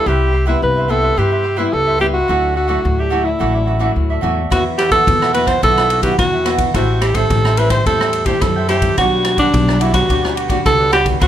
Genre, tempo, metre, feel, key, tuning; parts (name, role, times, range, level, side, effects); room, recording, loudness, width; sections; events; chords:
samba and choro; 108 BPM; 4/4; straight; G major; A4 = 438 Hz
breathy alto saxophone; melody; 0.0-11.3 s; D4 to C5; -16 LUFS; right 1 dB
cavaquinho; accompaniment; 0.0-11.3 s; D4 to G5; -21 LUFS; right 4 dB
nylon-string guitar; accompaniment; 0.0-11.3 s; G2 to F#4; -23 LUFS; left 4 dB
upright bass; bass; 0.1-11.3 s; A1 to G2; -19 LUFS; equal
swinging big-band drum kit; drums; 4.5-11.3 s; kick drum, ride cymbal, rim click; -19 LUFS; equal
light reverb; -13 LUFS; side -11 dB against mid
0.0-11.3 A section
0.1 Cmaj7; 2.3 Dadd9; 4.5 Esus2; 6.7 Am7; 9.0 Gmaj7/B